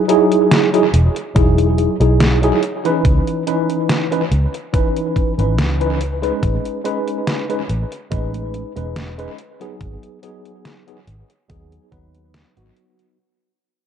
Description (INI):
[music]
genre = vaporwave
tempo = 71 BPM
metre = 4/4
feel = swing 53% on 16ths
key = unclear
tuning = A4 = 440 Hz
[part]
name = tine electric piano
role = accompaniment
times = 0.0-13.2 s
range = E3 to B4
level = -18 LUFS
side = right 1 dB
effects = medium stereo tremolo, wide subtle chorus, vintage 12-bit sampler grit, analog delay
[part]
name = detuned 8-bit digital drum machine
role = drums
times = 0.1-13.1 s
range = hi-hat, snare drum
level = -21 LUFS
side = equal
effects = vintage 12-bit sampler grit, analog delay
[part]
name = vintage muted fingered electric bass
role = bass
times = 0.9-12.7 s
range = E1 to D#2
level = -17 LUFS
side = equal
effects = none
[part]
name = electronic kick drum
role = drums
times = 1.4-12.1 s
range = none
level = -18 LUFS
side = equal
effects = vintage 12-bit sampler grit
[sound]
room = moderate spring reverb, RT60 1.9 s, digital ambience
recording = echo-heavy mix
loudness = -15 LUFS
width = side -8 dB against mid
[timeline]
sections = 0.0-13.2 A section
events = fade-out 0.0-13.2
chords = 0.0 Emaj9; 2.6 C#m9; 6.4 Amaj9#11; 9.4 G#m7